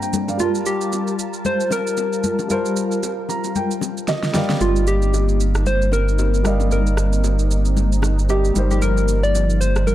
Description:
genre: amapiano.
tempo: 114 BPM.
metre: 4/4.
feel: swing 58% on 16ths.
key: unclear.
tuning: A4 = 439 Hz.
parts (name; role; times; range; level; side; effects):
dark concert grand piano; accompaniment; 0.0-9.9 s; G3 to Bb5; -26 LUFS; equal; none.
warm analog pad; sustained chords; 0.0-9.9 s; G2 to A5; -27 LUFS; left 1 dB; chorus.
electronic shaker, snare drum and rim click; drums; 0.0-9.9 s; none; -27 LUFS; right 2 dB; overdrive.
congas and bongos; percussion; 0.1-9.9 s; none; -27 LUFS; left 5 dB; none.
soft struck synth lead; melody; 0.4-9.9 s; F4 to D5; -23 LUFS; equal; chorus, tape echo.
sub bass with octave; bass; 4.6-9.9 s; G1; -18 LUFS; equal; none.
room: digital ambience.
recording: dark, warm production.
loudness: -17 LUFS.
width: side -13 dB against mid.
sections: 0.0-9.9 A section.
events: grand piano fill 3.0-4.6; drum fill 4.1-4.6.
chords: 0.4 Gm9; 4.3 Cm11/G.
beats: | 0.40 0.92 1.45 1.98 | 2.50 3.03 3.56 4.08 | 4.61 5.13 5.66 6.19 | 6.71 7.24 7.76 8.29 | 8.82 9.34 9.87.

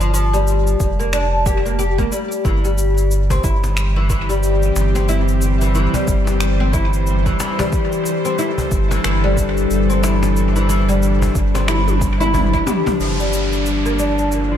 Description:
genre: organic downtempo.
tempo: 91 BPM.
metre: 4/4.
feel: swing 59% on 16ths.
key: unclear.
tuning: A4 = 438 Hz.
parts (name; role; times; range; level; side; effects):
oud; arpeggios; 0.0-14.6 s; E3 to G4; -20 LUFS; left 2 dB; low-pass filter, tape echo.
warm sub bass; bass; 0.0-14.6 s; F1 to G1; -18 LUFS; equal; sidechain pumping.
deep house drum kit; drums; 0.0-14.5 s; finger snaps, shaker, toms; -27 LUFS; equal; dub echo.
electronic kick drum; drums; 0.8-12.6 s; none; -21 LUFS; equal; none.
bowed-like drone; sustained chords; 3.7-14.6 s; E3 to C5; -22 LUFS; left 1 dB; built-in reverb, sidechain pumping.
cajon; percussion; 3.3-13.0 s; none; -28 LUFS; left 2 dB; dub echo.
downlifter; sound effects; 13.0-14.6 s; none; -26 LUFS; right 1 dB; none.
room: light reverb, digital ambience.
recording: echo-heavy mix.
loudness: -15 LUFS.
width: side -10 dB against mid.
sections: 0.0-13.0 A section; 13.0-14.6 B section.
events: drum fill 11.7-13.0.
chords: 0.0 Gm7; 2.5 C/G; 13.0 Gm7.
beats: 0.47 1.13 1.79 | 2.45 3.11 3.77 4.43 | 5.09 5.75 6.41 7.07 | 7.72 8.38 9.04 9.70 | 10.36 11.02 11.68 12.34 | 13.00 13.66 14.32.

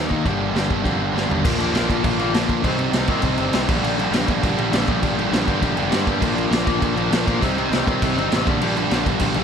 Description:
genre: punk rock.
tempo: 201 BPM.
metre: 4/4.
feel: straight.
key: G minor.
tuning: A4 = 437 Hz.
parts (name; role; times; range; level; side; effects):
biting overdriven guitar; riff; 0.0-9.4 s; G2 to Eb4; -23 LUFS; right 13 dB; none.
overdriven electric guitar; riff; 0.0-9.4 s; G2 to Eb4; -23 LUFS; left 13 dB; none.
fuzz picked electric bass; bass; 0.0-9.4 s; F1 to Bb2; -26 LUFS; equal; overdrive.
raw garage drum kit; drums; 0.1-9.4 s; crash cymbal, kick drum, snare drum, toms; -23 LUFS; equal; none.
room: light reverb.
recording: none.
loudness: -18 LUFS.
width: side -7 dB against mid.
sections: 0.0-1.4 A section; 1.4-9.4 B section.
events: drum fill 1.1.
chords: 0.2 Gm; 1.4 Bb; 2.6 Cm; 3.7 Gm/Bb; 6.2 Bb; 7.4 Cm; 8.5 Gm/Bb.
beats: | 0.25 0.55 0.84 1.14 | 1.44 1.74 2.04 2.34 | 2.64 2.94 3.24 3.54 | 3.83 4.13 4.43 4.73 | 5.03 5.33 5.63 5.92 | 6.22 6.52 6.82 7.12 | 7.42 7.71 8.01 8.31 | 8.61 8.91 9.20.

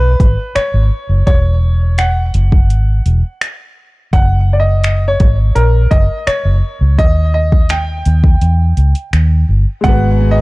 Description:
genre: contemporary R&B.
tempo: 84 BPM.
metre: 4/4.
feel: straight.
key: G# minor.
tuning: A4 = 443 Hz.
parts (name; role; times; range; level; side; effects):
clear baby grand piano; melody; 0.0-10.4 s; A#4 to G5; -19 LUFS; equal; digital delay.
vintage muted fingered electric bass; bass; 0.0-10.4 s; E1 to E2; -11 LUFS; equal; none.
smooth R&B drum kit; drums; 0.2-10.0 s; finger snaps, hi-hat, kick drum; -13 LUFS; equal; overdrive, vintage 12-bit sampler grit.
clear concert grand piano; accompaniment; 9.8-10.4 s; G#3 to B4; -17 LUFS; left 5 dB; none.
warm studio string section; sustained chords; 9.8-10.4 s; F#5 to A#5; -32 LUFS; left 7 dB; none.
nylon-string guitar; arpeggios; 9.8-10.4 s; G#3 to B3; -18 LUFS; right 6 dB; none.
room: little or no reverb.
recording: dark, warm production.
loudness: -10 LUFS.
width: side -22 dB against mid.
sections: 0.0-10.4 A section.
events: none.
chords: 0.0 G#m7; 1.3 Esus2; 4.1 F#5; 7.0 D#; 9.8 G#m9.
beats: 0.56 | 1.27 1.98 2.70 3.41 | 4.13 4.84 5.56 6.27 | 6.98 7.70 8.41 9.13 | 9.84.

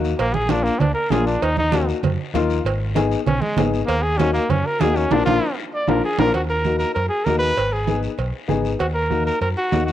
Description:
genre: latin, cumbia.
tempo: 195 BPM.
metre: 4/4.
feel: straight.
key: Eb minor.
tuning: A4 = 439 Hz.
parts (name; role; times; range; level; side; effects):
warm upright piano; accompaniment; 0.0-9.9 s; Bb3 to Ab4; -23 LUFS; left 6 dB; none.
fingered electric bass; bass; 0.0-9.9 s; Ab1 to Gb2; -24 LUFS; equal; none.
guiro; percussion; 0.0-9.9 s; none; -38 LUFS; left 8 dB; none.
clear trumpet; melody; 0.2-9.9 s; Ab3 to D5; -22 LUFS; equal; none.
congas; percussion; 0.2-9.9 s; none; -25 LUFS; right 6 dB; none.
cowbell and timbales; percussion; 0.2-9.9 s; none; -28 LUFS; right 7 dB; none.
room: light reverb.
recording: home recording on cassette.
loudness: -18 LUFS.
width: side -12 dB against mid.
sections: 0.0-6.3 A section; 6.3-9.9 B section.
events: trumpet solo 0.0-6.3; band accent 5.1-6.3; drum fill 5.4-6.3.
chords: 0.2 Bb; 1.4 Ebm; 2.7 Abm; 3.9 Ebm; 5.1 Bb; 6.3 Ebm; 7.6 Abm; 8.8 Ebm.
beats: | 0.19 0.50 0.81 1.12 | 1.42 1.73 2.04 2.35 | 2.65 2.96 3.27 3.58 | 3.88 4.19 4.50 4.81 | 5.11 5.42 5.73 6.04 | 6.34 6.65 6.96 7.26 | 7.57 7.88 8.19 8.50 | 8.80 9.11 9.42 9.73.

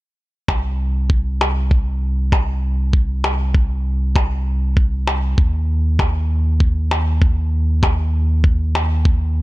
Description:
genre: piano and strings electronica.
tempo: 98 BPM.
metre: 4/4.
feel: straight.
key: C minor.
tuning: A4 = 440 Hz.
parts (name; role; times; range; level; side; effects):
warm sub bass; bass; 0.5-9.4 s; C2 to Eb2; -18 LUFS; equal; sidechain pumping.
electronic kick drum; drums; 0.5-9.2 s; none; -16 LUFS; equal; none.
percussion blips; drums; 0.5-8.9 s; none; -23 LUFS; left 1 dB; none.
room: little or no reverb.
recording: none.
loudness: -16 LUFS.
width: side -18 dB against mid.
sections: 0.5-9.4 A section.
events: none.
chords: none.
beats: | 0.48 1.10 1.71 2.32 | 2.93 3.55 4.16 4.77 | 5.38 6.00 6.61 7.22 | 7.83 8.45 9.06.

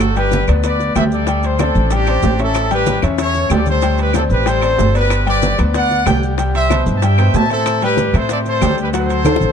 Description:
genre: latin, salsa.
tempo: 188 BPM.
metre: 4/4.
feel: straight.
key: G major.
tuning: A4 = 440 Hz.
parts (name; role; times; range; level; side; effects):
bright trumpet section; melody; 0.0-9.5 s; D4 to A5; -18 LUFS; equal; none.
upright bass; bass; 0.0-9.5 s; G1 to A2; -17 LUFS; equal; none.
bongos; percussion; 0.0-9.4 s; none; -26 LUFS; left 11 dB; none.
claves; percussion; 0.0-9.4 s; none; -30 LUFS; left 3 dB; none.
congas; percussion; 0.0-9.5 s; none; -24 LUFS; right 2 dB; none.
maracas; percussion; 0.0-9.5 s; none; -34 LUFS; right 9 dB; none.
timbales; percussion; 0.0-9.3 s; none; -24 LUFS; right 8 dB; none.
clear baby grand piano; accompaniment; 0.2-9.5 s; B2 to G5; -20 LUFS; left 5 dB; none.
room: light reverb.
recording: dark, warm production.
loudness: -13 LUFS.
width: side -7 dB against mid.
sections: 0.0-9.5 A section.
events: drum fill 9.3.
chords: 0.0 G; 1.3 D7sus4; 2.6 A7; 3.8 D7sus4; 5.1 Gmaj7; 6.4 Cmaj7; 7.7 Am7; 8.9 D7.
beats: | 0.00 0.32 0.64 0.95 | 1.27 1.59 1.91 2.23 | 2.55 2.87 3.19 3.51 | 3.83 4.15 4.47 4.79 | 5.11 5.43 5.75 6.07 | 6.38 6.70 7.02 7.34 | 7.66 7.98 8.30 8.62 | 8.94 9.26.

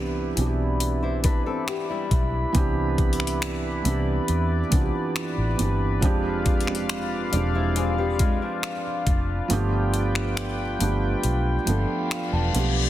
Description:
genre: contemporary R&B.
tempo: 69 BPM.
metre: 4/4.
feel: straight.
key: C major.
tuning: A4 = 441 Hz.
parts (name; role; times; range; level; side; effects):
felt-muted upright piano; accompaniment; 0.0-12.9 s; E3 to A5; -27 LUFS; right 4 dB; none.
chorused pulse-width pad; sustained chords; 0.0-12.9 s; E4 to B5; -30 LUFS; left 2 dB; none.
vintage muted fingered electric bass; bass; 0.0-12.9 s; E1 to E2; -26 LUFS; equal; none.
trap drum kit; drums; 0.4-12.7 s; finger snaps, hi-hat, kick drum; -26 LUFS; equal; soft clipping on snare.
nylon-string guitar; arpeggios; 1.0-9.5 s; F3 to D5; -31 LUFS; left 6 dB; digital delay.
reverse cymbal; sound effects; 11.8-12.9 s; none; -31 LUFS; left 9 dB; none.
room: digital ambience.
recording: dense, heavily limited modern master.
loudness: -22 LUFS.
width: side -13 dB against mid.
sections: 0.0-12.9 A section.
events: kick muted 9.5-12.9; felt piano fill 11.7-12.9; reverse cymbal 11.8-12.9.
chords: 0.0 Cmaj9; 6.0 Fm6; 9.5 G7.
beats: 0.81 1.68 | 2.54 3.42 4.29 5.15 | 6.02 6.89 7.76 8.63 | 9.50 10.37 11.24 12.11.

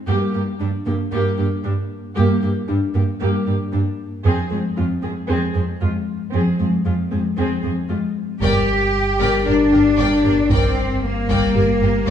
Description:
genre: cinematic, hybrid orchestral and electronic film score.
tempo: 115 BPM.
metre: 4/4.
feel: straight.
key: G phrygian.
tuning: A4 = 442 Hz.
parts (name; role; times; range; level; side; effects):
rich chamber viola section; accompaniment; 0.1-12.1 s; G3 to Bb4; -25 LUFS; right 1 dB; none.
harp-like synth pluck; arpeggios; 0.1-12.1 s; F3 to G4; -24 LUFS; left 4 dB; chorus, digital delay.
clear symphonic cello section; bass; 0.1-12.1 s; F2 to G4; -21 LUFS; right 3 dB; none.
clear symphonic violin section; melody; 8.4-11.9 s; Bb4 to G5; -30 LUFS; left 5 dB; none.
rich studio violin section; second line; 8.4-12.1 s; G4 to D5; -28 LUFS; left 2 dB; none.
mellow French horn section; sustained chords; 8.4-12.1 s; Bb3 to G4; -19 LUFS; left 4 dB; none.
pure sine sub bass; bass; 8.4-12.1 s; G1; -25 LUFS; equal; none.
rich symphonic double bass section; bass; 8.4-12.1 s; G1; -23 LUFS; right 3 dB; none.
taiko ensemble; drums; 8.4-12.1 s; none; -25 LUFS; equal; none.
room: moderate scoring stage reverb, RT60 1.8 s.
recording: small room ambience.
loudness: -17 LUFS.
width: side -9 dB against mid.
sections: 0.0-8.4 A section; 8.4-12.1 B section.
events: build-up 0.0-8.4.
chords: 0.1 Gm; 4.3 Fm; 8.4 Gm.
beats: | 0.08 0.60 1.12 1.65 | 2.17 2.69 3.21 3.73 | 4.25 4.78 5.30 5.82 | 6.34 6.86 7.38 7.91 | 8.43 8.95 9.47 9.99 | 10.52 11.04 11.56 12.08.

